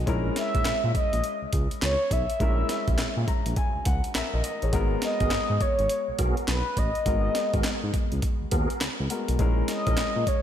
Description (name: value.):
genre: R&B, new jack swing.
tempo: 103 BPM.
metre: 4/4.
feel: swing 63% on 16ths.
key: unclear.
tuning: A4 = 438 Hz.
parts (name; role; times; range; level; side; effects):
warm baby grand piano; accompaniment; 0.0-10.4 s; G#3 to A#5; -32 LUFS; left 4 dB; slapback echo.
smooth synth bass; bass; 0.0-10.2 s; G#1 to A#2; -28 LUFS; equal; none.
breakbeat sampler-style drum kit; drums; 0.1-10.4 s; handclaps, hi-hat, kick drum, snare drum; -27 LUFS; equal; none.
mellow horn-like synth lead; melody; 0.4-10.4 s; B4 to E5; -28 LUFS; equal; chorus, slapback echo.
tonewheel organ; stabs; 5.2-10.0 s; B3 to A#4; -35 LUFS; right 1 dB; chorus vibrato, slow rotary speaker, slapback echo, ping-pong delay.
room: moderate scoring stage reverb, RT60 2.0 s.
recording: big arena sound.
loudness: -23 LUFS.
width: side -10 dB against mid.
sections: 0.0-10.4 A section.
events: grand piano fill 3.0-4.7.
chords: 0.1 A#m7b5; 4.7 G#m9; 9.4 A#m7b5.